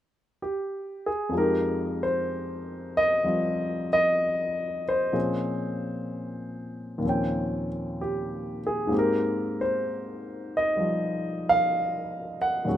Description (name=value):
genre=jazz ballad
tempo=64 BPM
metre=4/4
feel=swing 68% on 8ths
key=F minor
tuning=A4 = 440 Hz
part: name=warm grand piano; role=solo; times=0.4-12.8 s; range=Eb2 to G5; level=-25 LUFS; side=equal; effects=none
room=light reverb, small room ambience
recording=rough home demo mix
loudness=-25 LUFS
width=side -11 dB against mid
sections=0.0-1.3 A section; 1.3-12.8 B section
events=none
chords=0.0 N.C.; 1.3 Fm9; 5.1 Bbm9; 7.0 Eb13; 8.9 Abmaj7